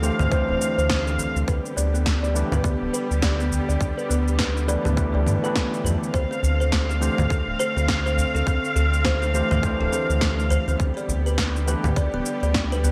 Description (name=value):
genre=organic downtempo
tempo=103 BPM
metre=4/4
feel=swing 59% on 16ths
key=D dorian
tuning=A4 = 440 Hz
part: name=overdriven tine electric piano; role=accompaniment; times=0.0-11.9 s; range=E3 to C5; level=-31 LUFS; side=equal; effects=sidechain pumping, digital delay
part: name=warm chamber string section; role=sustained chords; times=0.0-12.9 s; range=D3 to F5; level=-31 LUFS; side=equal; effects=sidechain pumping
part: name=kalimba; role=arpeggios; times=0.0-12.9 s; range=B3 to D5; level=-31 LUFS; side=equal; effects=low-pass filter, digital delay
part: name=round analog bass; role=bass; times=0.0-12.9 s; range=D1 to G2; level=-26 LUFS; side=equal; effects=sidechain pumping
part: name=electronic shaker, congas and snare drum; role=drums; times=0.0-12.9 s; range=none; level=-30 LUFS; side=equal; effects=overdrive, gated reverb
part: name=electronic kick drum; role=drums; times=0.3-12.7 s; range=none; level=-28 LUFS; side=equal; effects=overdrive
part: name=udu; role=percussion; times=0.5-12.9 s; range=none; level=-30 LUFS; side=equal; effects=none
room=moderate plate reverb, RT60 2.0 s, studio ambience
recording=bright 1980s-style digital production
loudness=-22 LUFS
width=mono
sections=0.0-12.9 A section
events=filter sweep on kalimba 0.0-12.9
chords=0.0 Dm7; 1.5 G/D; 6.1 Dm7; 10.8 G/D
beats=0.32 0.90 | 1.48 2.06 2.65 3.23 | 3.81 4.39 4.98 5.56 | 6.14 6.72 7.31 7.89 | 8.47 9.05 9.64 10.22 | 10.80 11.38 11.97 12.55